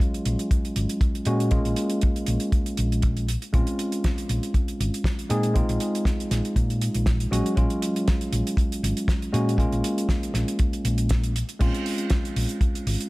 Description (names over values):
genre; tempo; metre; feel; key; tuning
nu-disco, nu disco; 119 BPM; 4/4; swing 54% on 16ths; Bb minor; A4 = 437 Hz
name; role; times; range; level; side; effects
tine electric piano; accompaniment; 0.0-13.1 s; Gb3 to Ab4; -27 LUFS; equal; vintage 12-bit sampler grit, sidechain pumping, low-pass filter, tape echo
damped 70s drum kit; drums; 0.0-13.1 s; crash cymbal, hi-hat, snare drum; -33 LUFS; right 2 dB; studio reverb
kick drum; drums; 0.0-12.7 s; none; -23 LUFS; equal; studio reverb
hollow-body short-scale fingered electric bass; bass; 0.3-12.9 s; Ab1 to Bb2; -25 LUFS; equal; tube saturation
room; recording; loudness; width
studio reverb; none; -22 LUFS; side -21 dB against mid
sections
0.0-13.1 A section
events
none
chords
0.0 Ab7sus4; 1.3 Gbmaj7/Bb (rootless); 3.5 Bbm9 (rootless); 5.3 Fm7/Bb; 7.3 Ab13sus4; 9.3 Gbmaj7/Bb (rootless); 11.6 Bbm9 (rootless)